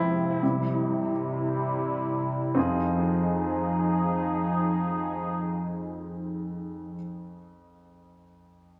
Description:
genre	pop ballad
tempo	free time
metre	none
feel	none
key	F minor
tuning	A4 = 440 Hz
part	clear baby grand piano	accompaniment	0.0-8.8 s	F2 to Ab4	-33 LUFS	equal	dub echo
part	sweeping resonant pad	sustained chords	0.0-7.0 s	C3 to Ab4	-30 LUFS	equal	subtle chorus
room	moderate spring reverb, RT60 1.3 s, small room ambience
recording	echo-heavy mix, faint mains hum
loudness	-28 LUFS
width	mono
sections	0.0-2.6 A section; 2.6-6.9 B section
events	slowing down 0.0-2.6; grand piano solo 0.0-2.6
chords	0.4 C; 2.6 Fm7

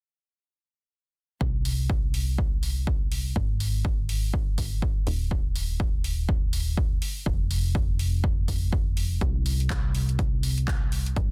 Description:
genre	piano house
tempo	123 BPM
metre	4/4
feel	swing 59% on 16ths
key	C minor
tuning	A4 = 438 Hz
part	plucky analog bass	bass	1.4-11.3 s	Eb1 to C2	-30 LUFS	equal	sidechain pumping
part	electronic kick drum	drums	1.4-11.3 s	none	-29 LUFS	equal	none
part	house drum kit	drums	1.7-11.3 s	handclaps, hi-hat	-38 LUFS	equal	none
room	digital ambience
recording	dense, heavily limited modern master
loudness	-26 LUFS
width	mono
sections	1.4-11.3 A section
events	none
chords	none

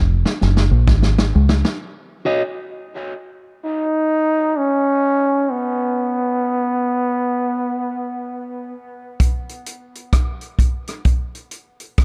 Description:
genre	dub reggae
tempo	65 BPM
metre	4/4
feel	swing 63% on 16ths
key	Eb minor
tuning	A4 = 440 Hz
part	deep dub fingered electric bass	bass	0.0-1.6 s	F1 to Db2	-17 LUFS	equal	none
part	vintage drum kit	drums	0.3-1.8, 9.2-12.0 s	hi-hat, kick drum, rim click, snare drum	-20 LUFS	equal	none
part	electric guitar at the edge of break-up	accompaniment	2.3-2.4 s	Gb4 to Eb5	-27 LUFS	equal	warbly pitch drift, dub echo
part	clear trombone	melody	3.6-8.7 s	Cb4 to Eb4	-21 LUFS	equal	dub echo
room	light reverb, small room ambience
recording	dark, warm production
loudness	-19 LUFS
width	mono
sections	0.0-1.8 A section; 1.8-12.0 B section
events	break 0.0-1.8, 1.8-12.0; drum fill 0.0-1.8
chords	0.0 Fmadd11; 1.8 Ebm7; 5.5 N.C.

